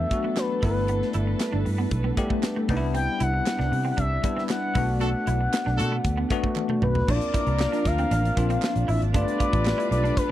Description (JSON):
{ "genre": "polished 1980s jazz-funk pop", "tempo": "116 BPM", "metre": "4/4", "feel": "straight", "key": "unclear", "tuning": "A4 = 440 Hz", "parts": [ { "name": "expressive synth lead", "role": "melody", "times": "0.0-10.3 s", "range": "B4 to G5", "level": "-29 LUFS", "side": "left 2 dB", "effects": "chorus, tape echo" }, { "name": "bell-like tine electric piano", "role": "accompaniment", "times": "0.0-10.3 s", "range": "F#3 to G4", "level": "-29 LUFS", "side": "left 4 dB", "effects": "medium stereo tremolo, analog chorus" }, { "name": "dark chamber string section", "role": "sustained chords", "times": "0.0-10.3 s", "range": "C3 to B4", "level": "-34 LUFS", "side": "right 3 dB", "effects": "none" }, { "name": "vintage muted fingered electric bass", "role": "bass", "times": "0.0-10.1 s", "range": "G1 to C3", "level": "-25 LUFS", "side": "equal", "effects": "none" }, { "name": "electric guitar at the edge of break-up", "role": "riff", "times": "0.1-10.1 s", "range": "A3 to F4", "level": "-33 LUFS", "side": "right 4 dB", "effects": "tube saturation, ensemble chorus" }, { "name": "modern studio drum kit", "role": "drums", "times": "0.1-10.3 s", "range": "crash cymbal, hi-hat, kick drum, snare drum, toms", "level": "-28 LUFS", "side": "equal", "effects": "none" }, { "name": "group handclap", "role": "percussion", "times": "0.4-9.8 s", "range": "none", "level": "-37 LUFS", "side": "right 14 dB", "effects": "none" }, { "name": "warm horn section", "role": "second line", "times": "5.0-10.3 s", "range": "D4 to B4", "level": "-32 LUFS", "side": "equal", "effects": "none" } ], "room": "little or no reverb", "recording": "dry, close 1970s-style studio recording", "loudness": "-22 LUFS", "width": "side -13 dB against mid", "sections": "0.0-7.1 A section; 7.1-10.3 B section", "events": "band accent 5.0-7.1; drum fill 6.6-7.1", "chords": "0.0 E7sus4; 0.6 G69; 2.7 Cmaj9; 4.8 Bm7; 7.1 Bbmaj7; 9.1 G7", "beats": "0.37 | 0.89 1.41 1.92 2.44 | 2.96 3.47 3.99 4.50 | 5.02 5.54 6.05 6.57 | 7.08 7.60 8.11 8.63 | 9.14 9.66 10.17" }